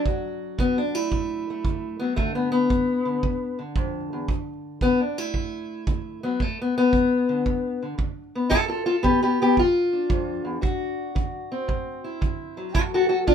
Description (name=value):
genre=acoustic country blues, solo or duo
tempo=114 BPM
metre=4/4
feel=swing 67% on 8ths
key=D mixolydian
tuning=A4 = 440 Hz
part: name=fingerpicked steel-string acoustic guitar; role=melody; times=0.0-13.3 s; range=D2 to A4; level=-22 LUFS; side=left 2 dB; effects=none
part: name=kick drum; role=drums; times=0.1-13.3 s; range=none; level=-26 LUFS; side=right 2 dB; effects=none
room=light reverb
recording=minimal, uncompressed stereo recording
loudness=-22 LUFS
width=side -8 dB against mid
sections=0.0-13.3 A section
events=steel-string acoustic guitar solo 0.0-13.3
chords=0.0 D; 2.2 G; 4.3 D5; 6.4 G7; 10.6 D7